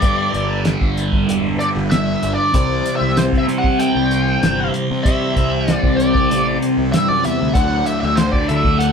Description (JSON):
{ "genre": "psychedelic rock", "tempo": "96 BPM", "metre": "4/4", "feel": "straight", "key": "unclear", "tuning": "A4 = 440 Hz", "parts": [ { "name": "bluesy overdriven lead guitar", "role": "melody", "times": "0.0-8.9 s", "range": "C5 to G5", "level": "-20 LUFS", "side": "equal", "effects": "wah, distortion" }, { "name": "percussive tonewheel organ", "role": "sustained chords", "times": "0.0-8.9 s", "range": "E3 to B5", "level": "-28 LUFS", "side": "right 1 dB", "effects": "slow rotary speaker, chorus vibrato" }, { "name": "thick fuzz guitar", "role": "riff", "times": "0.0-8.9 s", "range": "D2 to C4", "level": "-19 LUFS", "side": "left 1 dB", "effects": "distortion, phaser" }, { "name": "fuzz picked electric bass", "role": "bass", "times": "0.0-8.9 s", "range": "E1 to D3", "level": "-22 LUFS", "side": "equal", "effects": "overdrive" }, { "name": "cloth-damped thuddy drum kit", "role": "drums", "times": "0.0-8.9 s", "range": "hi-hat, kick drum, snare drum", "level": "-19 LUFS", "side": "equal", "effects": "none" }, { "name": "analog drone", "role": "drone", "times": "7.9-8.9 s", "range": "D2", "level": "-28 LUFS", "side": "left 1 dB", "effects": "chorus" } ], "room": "moderate studio reverb, RT60 0.7 s", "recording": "band playing live in one room", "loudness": "-14 LUFS", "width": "side -6 dB against mid", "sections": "0.0-8.9 A section", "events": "lead electric guitar solo 0.0-8.9", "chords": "0.0 G; 2.5 C; 7.5 D" }